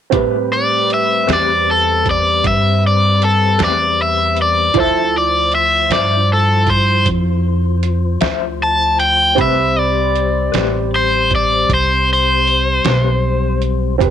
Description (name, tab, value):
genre	slow blues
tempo	52 BPM (dotted quarters)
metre	12/8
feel	straight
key	A minor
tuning	A4 = 440 Hz
part	electric guitar through a small old amp	accompaniment	0.1-13.1 s	A3 to E5	-22 LUFS	left 17 dB	tremolo
part	warm upright piano	accompaniment	0.1-14.1 s	C4 to B5	-23 LUFS	right 16 dB	none
part	tonewheel organ	sustained chords	0.1-14.1 s	F3 to C5	-23 LUFS	left 17 dB	slow rotary speaker, overdrive
part	upright bass	bass	0.1-14.1 s	E1 to A2	-18 LUFS	right 1 dB	none
part	trip hop sampler-style drum kit	drums	0.1-14.1 s	hi-hat, kick drum, snare drum	-21 LUFS	right 5 dB	none
part	cranked stack guitar	melody	0.5-13.6 s	A4 to A5	-14 LUFS	left 1 dB	overdrive
room	little or no reverb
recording	1960s-style stereo with parts hard left and right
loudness	-12 LUFS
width	side -9 dB against mid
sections	0.1-14.1 A section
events	none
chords	0.1 Am9; 4.8 Dm9; 9.4 Am9